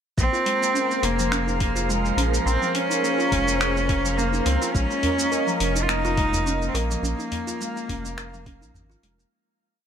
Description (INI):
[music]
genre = organic downtempo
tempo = 105 BPM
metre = 4/4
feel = swing 54% on 16ths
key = Bb minor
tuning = A4 = 440 Hz
[part]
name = clear cello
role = melody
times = 0.2-9.0 s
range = F3 to F4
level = -25 LUFS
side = equal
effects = tape echo, shimmer reverb
[part]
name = airy breathy pad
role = sustained chords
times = 0.5-9.3 s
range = Ab4 to Bb5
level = -30 LUFS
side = right 1 dB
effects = chorus, phaser, sidechain pumping, shimmer reverb
[part]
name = kalimba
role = arpeggios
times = 0.2-9.3 s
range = F3 to Bb4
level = -30 LUFS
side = equal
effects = low-pass filter, tape echo, shimmer reverb
[part]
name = round analog bass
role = bass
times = 0.2-9.3 s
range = F1 to Db2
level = -26 LUFS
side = equal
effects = tube saturation
[part]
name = deep house drum kit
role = drums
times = 0.2-9.3 s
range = finger snaps, hi-hat, shaker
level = -30 LUFS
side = equal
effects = none
[part]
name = electronic kick drum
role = drums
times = 0.2-8.6 s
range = none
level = -26 LUFS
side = equal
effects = none
[part]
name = drifting glass-harmonics texture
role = texture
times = 0.6-9.3 s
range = F5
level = -34 LUFS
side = right 5 dB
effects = chorus, built-in reverb, shimmer reverb
[part]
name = udu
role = percussion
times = 5.0-8.9 s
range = none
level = -31 LUFS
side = equal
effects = none
[sound]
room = light reverb, digital ambience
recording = none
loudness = -20 LUFS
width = side -8 dB against mid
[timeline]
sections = 0.2-9.3 groove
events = fade-out 6.3-9.3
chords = 0.2 Bbm9; 4.7 Eb5